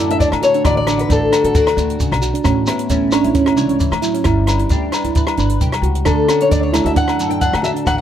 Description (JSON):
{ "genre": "highlife guitar band", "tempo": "133 BPM", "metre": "4/4", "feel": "swing 53% on 16ths", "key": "unclear", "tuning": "A4 = 440 Hz", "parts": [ { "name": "fingerpicked old ladder-braced acoustic guitar", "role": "melody", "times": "0.0-2.2, 6.1-8.0 s", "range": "F#4 to G5", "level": "-17 LUFS", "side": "left 3 dB", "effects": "none" }, { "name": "semi-hollow electric guitar", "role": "accompaniment", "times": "0.0-8.0 s", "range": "A2 to C#5", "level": "-24 LUFS", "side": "left 6 dB", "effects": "analog chorus" }, { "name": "harp-like synth pluck", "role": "arpeggios", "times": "0.0-8.0 s", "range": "B3 to F#4", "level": "-19 LUFS", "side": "right 6 dB", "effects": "chorus, slapback echo" }, { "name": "upright bass", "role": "bass", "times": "0.0-8.0 s", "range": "G1 to D3", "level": "-21 LUFS", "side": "equal", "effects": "none" }, { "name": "compact cocktail drum kit", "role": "drums", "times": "0.1-8.0 s", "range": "hi-hat, kick drum, rim click", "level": "-20 LUFS", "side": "equal", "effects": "none" }, { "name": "shekere", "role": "percussion", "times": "0.2-8.0 s", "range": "none", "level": "-24 LUFS", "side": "right 2 dB", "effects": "none" }, { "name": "agogo bells", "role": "percussion", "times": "0.3-8.0 s", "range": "none", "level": "-25 LUFS", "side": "left 6 dB", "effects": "none" }, { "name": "congas", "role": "percussion", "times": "6.7-7.7 s", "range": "none", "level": "-28 LUFS", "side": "left 3 dB", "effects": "none" } ], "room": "moderate spring reverb, RT60 1.4 s", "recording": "none", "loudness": "-13 LUFS", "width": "side -10 dB against mid", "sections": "0.0-8.0 A section", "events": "none", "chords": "0.0 A; 4.3 G; 6.1 D" }